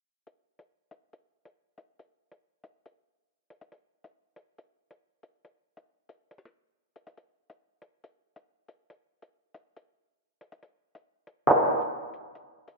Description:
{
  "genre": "hip hop",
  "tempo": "139 BPM",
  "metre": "4/4",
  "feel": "half-time",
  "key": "none",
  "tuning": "none",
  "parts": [
    { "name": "drill drum kit", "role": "drums", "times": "0.3-12.8 s", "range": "handclaps, hi-hat", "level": "-22 LUFS", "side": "equal", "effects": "gated reverb" }
  ],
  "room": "wet lush hall reverb, RT60 1.6 s, digital ambience",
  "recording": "bright 1980s-style digital production, low-pass filter",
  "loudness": "-23 LUFS",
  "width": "side -2 dB against mid",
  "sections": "0.3-12.8 A section",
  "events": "filter sweep 0.3-12.8",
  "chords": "none"
}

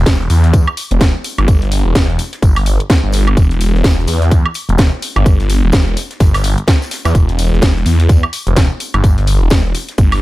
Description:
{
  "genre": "bass house",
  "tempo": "127 BPM",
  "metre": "4/4",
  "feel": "swing 59% on 16ths",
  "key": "E minor",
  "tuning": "A4 = 440 Hz",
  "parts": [
    { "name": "phased detuned saw bass", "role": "bass", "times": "0.0-10.2 s", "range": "E1 to E2", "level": "-13 LUFS", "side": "equal", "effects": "phaser, overdrive, sidechain pumping" },
    { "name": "electronic kick drum", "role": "drums", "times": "0.1-10.1 s", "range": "none", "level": "-11 LUFS", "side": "equal", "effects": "none" },
    { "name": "garage drum kit", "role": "drums", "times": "0.1-10.2 s", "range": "hi-hat, snare drum, woodblock", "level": "-19 LUFS", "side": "equal", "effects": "none" },
    { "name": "snare drum and tambourine", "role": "drums", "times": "0.1-10.1 s", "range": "none", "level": "-33 LUFS", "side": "left 2 dB", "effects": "high-pass filter on snare, sidechain pumping on perc, high-pass filter on perc, high-pass filter on room" }
  ],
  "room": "studio ambience",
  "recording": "none",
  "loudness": "-10 LUFS",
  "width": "side -18 dB against mid",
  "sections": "0.0-10.2 A section",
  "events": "none",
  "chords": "none"
}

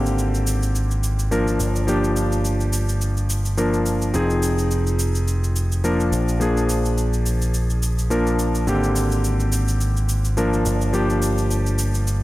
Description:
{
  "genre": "nu-disco, nu disco",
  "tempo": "106 BPM",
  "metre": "4/4",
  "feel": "swing 56% on 16ths",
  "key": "unclear",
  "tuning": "A4 = 440 Hz",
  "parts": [
    { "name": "warm electric grand piano", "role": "accompaniment", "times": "0.0-12.2 s", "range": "D3 to Bb4", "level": "-22 LUFS", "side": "left 1 dB", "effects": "low-pass filter, analog delay" },
    { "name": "picked electric bass with an envelope filter", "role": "bass", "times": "0.0-12.2 s", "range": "F1 to Bb1", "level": "-21 LUFS", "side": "equal", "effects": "none" },
    { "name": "cabasa", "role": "drums", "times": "0.1-12.2 s", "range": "none", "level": "-31 LUFS", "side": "right 1 dB", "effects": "studio ambience" }
  ],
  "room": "light reverb",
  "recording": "none",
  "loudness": "-18 LUFS",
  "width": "side -17 dB against mid",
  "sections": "0.0-12.2 A section",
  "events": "none",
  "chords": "0.0 Abmaj9#11; 1.6 Gm7; 4.1 Fm7; 6.1 Bb7; 8.7 Abmaj9#11; 10.7 Gm7"
}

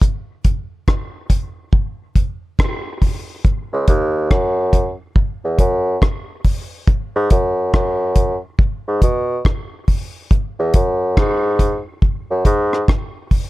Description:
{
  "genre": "dub reggae",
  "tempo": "70 BPM",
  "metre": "4/4",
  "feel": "swing 63% on 16ths",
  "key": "unclear",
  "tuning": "A4 = 438 Hz",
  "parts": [
    { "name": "deep reggae drum kit", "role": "drums", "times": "0.0-13.5 s", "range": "hi-hat, kick drum, rim click", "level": "-16 LUFS", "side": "equal", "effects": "none" },
    { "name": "mellow bassoon", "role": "bass", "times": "3.7-12.8 s", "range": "C#2 to B2", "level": "-17 LUFS", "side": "equal", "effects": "none" }
  ],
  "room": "little or no reverb",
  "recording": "none",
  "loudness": "-16 LUFS",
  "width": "side -18 dB against mid",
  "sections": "0.0-13.5 A section",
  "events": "break 0.0-3.4",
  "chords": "none"
}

